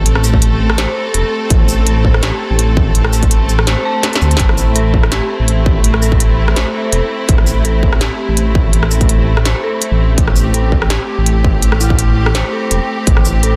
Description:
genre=half-time drum and bass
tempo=166 BPM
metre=4/4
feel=swing 54% on 16ths, half-time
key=A minor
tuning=A4 = 440 Hz
part: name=clear symphonic string section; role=sustained chords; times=0.0-13.6 s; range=A3 to A4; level=-23 LUFS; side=equal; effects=sidechain pumping
part: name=dark detuned synth bell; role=arpeggios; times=0.0-13.6 s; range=E4 to A5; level=-25 LUFS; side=equal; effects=chorus, tremolo, tape echo
part: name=dark detuned saw bass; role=bass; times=0.0-13.6 s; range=E1 to D2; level=-16 LUFS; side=equal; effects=none
part: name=industrial drum kit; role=drums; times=0.1-13.5 s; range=hi-hat, rim click, shaker, snare drum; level=-21 LUFS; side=equal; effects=none
part: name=electronic kick drum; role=drums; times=0.3-13.1 s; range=none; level=-16 LUFS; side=equal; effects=distortion
room=light reverb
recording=dense, heavily limited modern master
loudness=-13 LUFS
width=mono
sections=0.0-13.6 A section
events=drum fill 4.0-4.4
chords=0.0 Am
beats=| 0.06 0.42 0.78 1.14 | 1.50 1.86 2.23 2.59 | 2.95 3.31 3.67 4.03 | 4.39 4.76 5.12 5.48 | 5.84 6.20 6.56 6.93 | 7.29 7.65 8.01 8.37 | 8.73 9.09 9.46 9.82 | 10.18 10.54 10.90 11.26 | 11.62 11.99 12.35 12.71 | 13.07 13.43

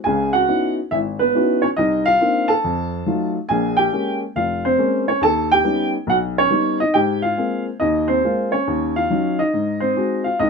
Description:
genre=solo jazz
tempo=139 BPM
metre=4/4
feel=swing 66% on 8ths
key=Ab major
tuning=A4 = 439 Hz
part: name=dark upright piano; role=solo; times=0.0-10.5 s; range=F1 to A5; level=-17 LUFS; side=equal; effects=none
room=light reverb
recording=minimal, uncompressed stereo recording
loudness=-17 LUFS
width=side -5 dB against mid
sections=0.0-10.4 A section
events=none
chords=0.0 Dbm11; 1.8 Cm11; 2.6 F7b9; 3.5 Bbm7; 5.2 Eb7b13; 6.9 Ab69; 8.7 Ebm7; 9.5 Ab7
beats=| 0.04 0.47 0.90 1.33 | 1.76 2.19 2.62 3.05 | 3.48 3.92 4.35 4.78 | 5.21 5.64 6.07 6.50 | 6.94 7.37 7.80 8.23 | 8.66 9.09 9.53 9.96 | 10.39

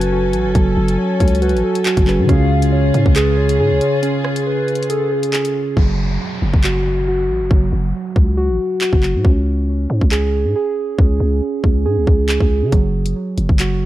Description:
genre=hip hop, drill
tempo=138 BPM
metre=4/4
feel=half-time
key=unclear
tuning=A4 = 440 Hz
part: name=hollow clarinet-like synth lead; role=second line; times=0.0-5.3 s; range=G#4 to E#5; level=-24 LUFS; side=left 3 dB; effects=chorus, phaser, tape echo
part: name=mellow tine electric piano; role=accompaniment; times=0.0-5.8 s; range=C#3 to B4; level=-21 LUFS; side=left 2 dB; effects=medium stereo tremolo
part: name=dark studio string section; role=sustained chords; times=0.0-5.7 s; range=C#3 to G#5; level=-26 LUFS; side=left 1 dB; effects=none
part: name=muted felt-like synth keys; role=arpeggios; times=0.0-13.9 s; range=F#3 to G#4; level=-19 LUFS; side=right 2 dB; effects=chorus, tape echo
part: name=growling 808-style bass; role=bass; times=0.0-13.9 s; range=F#1 to C#3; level=-18 LUFS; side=equal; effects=none
part: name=drill drum kit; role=drums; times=0.0-13.7 s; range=handclaps, hi-hat, kick drum, rim click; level=-16 LUFS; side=equal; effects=none
part: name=downlifter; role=sound effects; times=5.8-9.2 s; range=none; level=-32 LUFS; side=left 1 dB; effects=none
room=digital ambience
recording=dark, warm production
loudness=-14 LUFS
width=side -14 dB against mid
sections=0.0-5.8 A section; 5.8-13.9 B section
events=break 4.0-5.8; hi-hats muted 5.8-12.7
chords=0.0 F#madd9; 2.3 C#; 5.8 N.C.; 9.2 C#5; 12.7 N.C.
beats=0.12 | 0.55 0.99 1.42 1.85 | 2.29 2.73 3.16 3.59 | 4.03 4.46 4.90 5.33 | 5.77 6.20 6.64 7.07 | 7.51 7.94 8.38 8.81 | 9.25 9.68 10.12 10.55 | 10.99 11.42 11.86 12.29 | 12.72 13.16 13.59

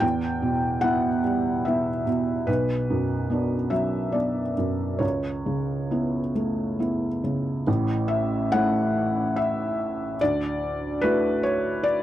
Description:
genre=neoclassical minimalist piano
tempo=67-74 BPM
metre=3/4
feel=rubato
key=unclear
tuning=A4 = 440 Hz
part: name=felt-muted upright piano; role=solo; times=0.0-12.0 s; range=A1 to G5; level=-22 LUFS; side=equal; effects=none
room=light reverb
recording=dry, close 1970s-style studio recording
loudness=-22 LUFS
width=side -12 dB against mid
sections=0.0-7.7 A section; 7.7-12.0 B section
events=none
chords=0.0 Em; 2.5 Bm; 5.0 Aadd9/C#; 7.7 A; 10.2 Dadd9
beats=| 0.03 0.84 1.66 | 2.48 3.30 4.15 | 5.03 5.92 6.80 | 7.67 8.53 9.37 | 10.20 11.01 11.83

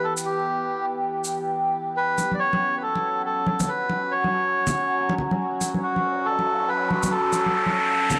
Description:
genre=deep dubstep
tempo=140 BPM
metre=4/4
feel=swing 62% on 16ths, half-time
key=unclear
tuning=A4 = 440 Hz
part: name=melodica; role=melody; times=0.0-8.2 s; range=F#4 to D5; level=-26 LUFS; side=equal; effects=dub echo
part: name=overtone-sweeping drone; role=sustained chords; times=0.0-8.2 s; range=E3 to G4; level=-30 LUFS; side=equal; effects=chorus, built-in reverb, phaser
part: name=shaker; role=drums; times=0.2-8.2 s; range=none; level=-34 LUFS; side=equal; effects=overdrive
part: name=congas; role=percussion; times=2.2-8.2 s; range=none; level=-30 LUFS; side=equal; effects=none
part: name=riser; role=sound effects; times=6.0-8.2 s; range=none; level=-31 LUFS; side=equal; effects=none
room=light reverb, small room ambience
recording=dry, gritty hardware recording, cassette tape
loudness=-24 LUFS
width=mono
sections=0.0-8.2 A section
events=riser 6.0-8.2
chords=0.0 Em; 2.0 F#m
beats=| 0.25 0.68 1.11 1.54 | 1.97 2.40 2.83 3.25 | 3.68 4.11 4.54 4.97 | 5.40 5.83 6.25 6.68 | 7.11 7.54 7.97

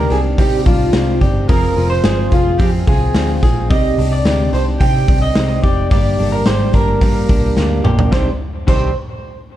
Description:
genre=jangly indie pop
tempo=108 BPM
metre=4/4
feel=straight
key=C minor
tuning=A4 = 440 Hz
part: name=electric guitar through a small old amp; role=melody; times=0.0-8.9 s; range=F4 to G5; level=-20 LUFS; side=right 1 dB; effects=harmonic tremolo, tape echo
part: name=growling trumpet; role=second line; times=0.0-8.9 s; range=C4 to G5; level=-32 LUFS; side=right 5 dB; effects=none
part: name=fingerpicked twelve-string acoustic guitar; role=accompaniment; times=0.0-8.9 s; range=C3 to D5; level=-23 LUFS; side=right 6 dB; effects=none
part: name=direct-recorded clean electric guitar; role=arpeggios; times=0.0-8.9 s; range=G2 to Ab4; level=-23 LUFS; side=left 6 dB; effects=tape echo
part: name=vintage muted picked electric bass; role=bass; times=0.0-8.9 s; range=F1 to C3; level=-18 LUFS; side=equal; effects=none
part: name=raw garage drum kit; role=drums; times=0.1-8.8 s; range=crash cymbal, hi-hat, kick drum, snare drum, toms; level=-16 LUFS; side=equal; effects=vintage 12-bit sampler grit
room=light reverb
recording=dark, warm production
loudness=-12 LUFS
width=side -13 dB against mid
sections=0.0-8.1 A section; 8.1-9.6 B section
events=drum fill 7.6-8.1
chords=0.0 Cmadd9; 1.5 Fm; 3.7 Cmadd9; 5.9 Gm; 8.1 Cmadd9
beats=0.38 0.94 | 1.49 2.04 2.60 3.15 | 3.70 4.25 4.81 5.36 | 5.91 6.46 7.02 7.57 | 8.12 8.68

